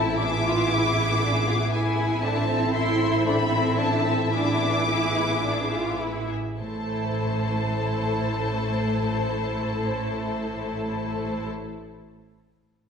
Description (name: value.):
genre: classical, dramatic, fast romantic movement for symphony orchestra.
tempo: 99-120 BPM.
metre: 4/4.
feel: rubato.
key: A minor.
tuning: A4 = 439 Hz.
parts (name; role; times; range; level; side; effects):
warm symphonic violin section; melody; 0.0-11.5 s; G#5 to D6; -29 LUFS; left 2 dB; none.
warm symphonic violin section; second line; 0.0-11.5 s; G#4 to E5; -30 LUFS; left 3 dB; none.
warm symphonic viola section; accompaniment; 0.0-11.5 s; A3 to E4; -29 LUFS; right 1 dB; none.
warm studio double bass section; bass; 0.0-11.5 s; A1; -29 LUFS; right 2 dB; none.
warm symphonic cello section; bass; 0.0-11.5 s; A2 to F4; -30 LUFS; equal; none.
room: wet scoring stage reverb, RT60 1.6 s.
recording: minimal, uncompressed stereo recording.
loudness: -22 LUFS.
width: side -6 dB against mid.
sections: 0.0-6.6 A section; 6.6-11.2 B section.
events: slowing down 1.2-6.6.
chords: 0.2 E7/A; 2.2 Am; 4.3 E7/A; 6.6 Am.